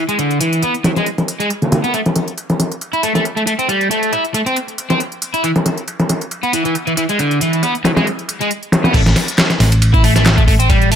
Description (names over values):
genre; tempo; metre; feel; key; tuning
breakbeat, breaks; 137 BPM; 4/4; swing 54% on 16ths; unclear; A4 = 437 Hz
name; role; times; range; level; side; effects
crunchy overdriven guitar; riff; 0.0-11.0 s; D3 to E4; -17 LUFS; equal; tube saturation, low-pass filter
house drum kit; drums; 0.1-11.0 s; handclaps, hi-hat; -24 LUFS; equal; none
dusty soul sampler-style drum kit; drums; 0.2-11.0 s; crash cymbal, hi-hat, kick drum, ride cymbal, snare drum; -16 LUFS; equal; low-pass filter on cymbals, low-pass filter on snare, low-pass filter on hats, low-pass filter on kick, low-pass filter on room
hollow-body short-scale fingered electric bass; bass; 8.9-11.0 s; A1; -13 LUFS; equal; none
room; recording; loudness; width
light reverb, digital ambience; none; -13 LUFS; side -8 dB against mid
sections
0.0-8.9 A section; 8.9-11.0 B section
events
drop 8.9-11.0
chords
0.0 E; 1.9 Am7; 5.4 E; 8.9 N.C.